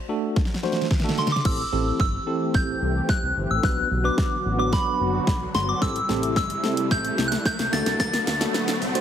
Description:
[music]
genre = dance-pop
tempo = 110 BPM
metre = 4/4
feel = straight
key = A dorian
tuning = A4 = 441 Hz
[part]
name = tine electric piano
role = accompaniment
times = 0.1-9.0 s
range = A3 to C5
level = -28 LUFS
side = right 1 dB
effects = medium stereo tremolo, sidechain pumping
[part]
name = pop drum kit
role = drums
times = 0.4-9.0 s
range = crash cymbal, hi-hat, kick drum, shaker, snare drum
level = -24 LUFS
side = equal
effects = none
[part]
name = soft synth bell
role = melody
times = 1.2-9.0 s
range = B5 to A6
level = -26 LUFS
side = equal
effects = chorus, phaser, ping-pong delay
[part]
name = sweeping resonant pad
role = sustained chords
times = 1.5-9.0 s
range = C3 to G4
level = -31 LUFS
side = left 1 dB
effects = chorus, sidechain pumping
[part]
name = round analog bass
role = bass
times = 1.5-9.0 s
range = F#1 to D2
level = -28 LUFS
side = equal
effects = sidechain pumping
[part]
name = riser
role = sound effects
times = 3.9-9.0 s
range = none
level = -34 LUFS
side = left 1 dB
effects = none
[sound]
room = light reverb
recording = heavily compressed radio sound, high-pass filter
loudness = -21 LUFS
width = side -9 dB against mid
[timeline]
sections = 0.0-1.5 A section; 1.5-9.0 B section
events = drum fill 0.4-1.5, 1.5-9.0; build-up 1.5-9.0; filter sweep 1.5-9.0; riser 3.9-9.0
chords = 0.0 D; 1.5 Am7; 3.6 Bm; 5.8 Am7; 7.7 D

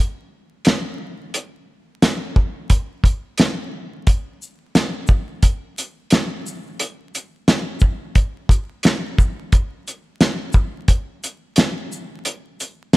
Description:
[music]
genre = hip hop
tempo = 88 BPM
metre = 4/4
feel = swing 62% on 16ths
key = none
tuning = none
[part]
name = cloth-damped thuddy drum kit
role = drums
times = 0.6-13.0 s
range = hi-hat, kick drum, shaker, snare drum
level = -16 LUFS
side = equal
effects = none
[sound]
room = light reverb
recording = vinyl crackle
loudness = -18 LUFS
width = side -20 dB against mid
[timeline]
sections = 0.0-13.0 A section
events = none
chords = none

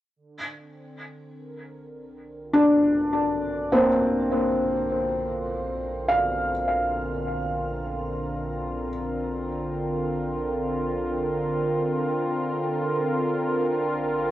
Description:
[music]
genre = ambient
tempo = free time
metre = none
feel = none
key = Bb major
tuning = A4 = 442 Hz
[part]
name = warm analog pad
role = sustained chords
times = 0.2-14.3 s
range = D3 to Bb4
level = -28 LUFS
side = equal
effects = chorus, cassette tape
[part]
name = deep rumbling drone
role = bass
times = 2.4-14.3 s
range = Bb1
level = -40 LUFS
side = equal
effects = built-in reverb
[part]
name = felt-muted upright piano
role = arpeggios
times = 2.5-14.3 s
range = Bb3 to F5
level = -22 LUFS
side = equal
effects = cassette tape, analog delay, shimmer reverb
[sound]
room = wet studio ambience, RT60 0.5 s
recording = home recording on cassette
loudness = -23 LUFS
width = side -14 dB against mid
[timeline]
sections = 0.2-14.3 A section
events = fade-in on analog synth pad 0.2-14.3; fade-in on synth drone 0.2-14.3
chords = 0.2 Bbadd9

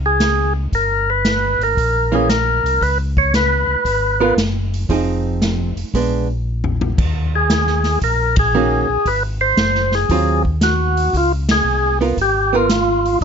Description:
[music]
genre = soul jazz organ trio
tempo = 115 BPM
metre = 4/4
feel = swing 68% on 8ths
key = Db mixolydian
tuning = A4 = 438 Hz
[part]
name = mellow tonewheel organ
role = bass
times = 0.0-13.2 s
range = F1 to Eb2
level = -20 LUFS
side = equal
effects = chorus vibrato, slow rotary speaker
[part]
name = percussive tonewheel organ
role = melody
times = 0.1-13.2 s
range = F4 to Db5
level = -16 LUFS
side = equal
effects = slow rotary speaker, overdrive
[part]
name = swinging big-band drum kit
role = drums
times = 0.2-13.2 s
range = crash cymbal, hi-hat, kick drum, ride cymbal, snare drum, toms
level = -21 LUFS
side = equal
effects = none
[part]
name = archtop guitar, miked and amplified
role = accompaniment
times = 2.1-12.7 s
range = Eb3 to Bb4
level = -18 LUFS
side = right 4 dB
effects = none
[sound]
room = light reverb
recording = nothing above 7.6 kHz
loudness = -14 LUFS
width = side -7 dB against mid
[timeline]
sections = 0.0-13.2 A section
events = drum fill 6.5-7.0; band accent 8.3, 11.4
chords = 0.0 Gbsus2 (rootless); 0.7 Gm; 2.8 Db5; 4.9 Fm7; 5.9 Bb7b9; 7.0 Ebm7; 9.1 Ab6; 11.1 Db6

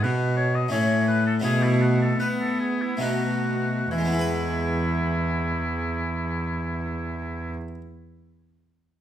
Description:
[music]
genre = classical, baroque-style sonata movement with continuo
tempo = 66-89 BPM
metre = 3/4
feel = straight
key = E major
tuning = A4 = 443 Hz
[part]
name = clear oboe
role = melody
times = 0.0-7.5 s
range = E4 to D#5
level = -29 LUFS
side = left 3 dB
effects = none
[part]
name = harpsichord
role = accompaniment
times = 0.0-7.8 s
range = A2 to B4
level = -27 LUFS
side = left 2 dB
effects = none
[part]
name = rich cello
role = bass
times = 0.0-7.5 s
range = E2 to B3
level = -26 LUFS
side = right 2 dB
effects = none
[sound]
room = wet recital hall reverb, RT60 1.3 s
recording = none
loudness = -22 LUFS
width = side -10 dB against mid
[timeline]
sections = 0.0-3.9 A section; 3.9-9.0 B section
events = slowing down 0.0-3.9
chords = 0.0 E5; 0.7 A; 1.4 B7sus4; 3.0 B7; 3.9 E

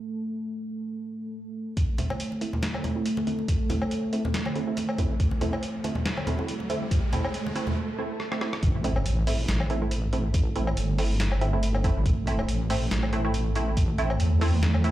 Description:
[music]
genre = deep dubstep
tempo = 140 BPM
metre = 4/4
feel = swing 55% on 16ths, half-time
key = A minor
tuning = A4 = 440 Hz
[part]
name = deep dark ambient pad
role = sustained chords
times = 0.0-14.9 s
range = A3 to A4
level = -32 LUFS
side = right 1 dB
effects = chorus, built-in reverb
[part]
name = electronic kick drum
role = drums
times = 1.8-13.9 s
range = none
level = -25 LUFS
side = equal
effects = none
[part]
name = trip hop sampler-style drum kit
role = drums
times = 1.8-14.9 s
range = hi-hat, rim click, snare drum, woodblock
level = -33 LUFS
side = equal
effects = low-pass filter on cymbals, low-pass filter on hats, low-pass filter on perc, low-pass filter on snare, low-pass filter on room
[part]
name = congas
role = percussion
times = 1.8-7.8 s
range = none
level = -32 LUFS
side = equal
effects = none
[part]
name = riser, swell and impact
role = sound effects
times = 3.6-10.3 s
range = none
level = -36 LUFS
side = right 1 dB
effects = none
[part]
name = filtered dub chord stab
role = stabs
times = 2.0-14.9 s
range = A3 to E4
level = -32 LUFS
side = right 2 dB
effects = analog chorus, dub echo
[part]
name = deep soft wobble bass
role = bass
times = 8.6-14.9 s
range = G1 to E2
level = -25 LUFS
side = equal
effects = chorus
[sound]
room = moderate spring reverb, RT60 1.1 s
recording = played on a big sound system in a bare room, large studio reverb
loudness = -24 LUFS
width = side -14 dB against mid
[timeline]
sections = 0.0-1.8 A section; 1.8-8.6 B section; 8.6-14.9 C section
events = build-up 1.8-8.6; filter sweep on synth stab 1.8-8.6; riser 3.6-7.8; break 7.8-8.6; swell 7.8-8.6; drum fill 8.2-8.6; drop 8.6-14.9; impact 8.6-10.3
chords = 0.0 N.C.; 1.8 Am

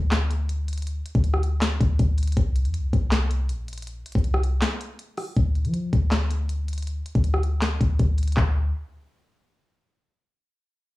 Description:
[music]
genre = hip hop, trap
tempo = 160 BPM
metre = 4/4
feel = half-time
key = unclear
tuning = A4 = 440 Hz
[part]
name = clean 808-style bass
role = bass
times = 0.0-8.7 s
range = Bb1 to F3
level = -23 LUFS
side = left 1 dB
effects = none
[part]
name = trap drum kit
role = drums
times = 0.1-8.5 s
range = handclaps, hi-hat, kick drum, rim click, snare drum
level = -25 LUFS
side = left 1 dB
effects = none
[sound]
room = digital ambience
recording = worn, warbling old tape, cassette tape, warbly pitch drift, studio reverb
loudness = -21 LUFS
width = side -18 dB against mid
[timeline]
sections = 0.0-5.4 A section; 5.4-8.4 B section; 8.4-9.9 C section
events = break 4.6-5.4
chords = none

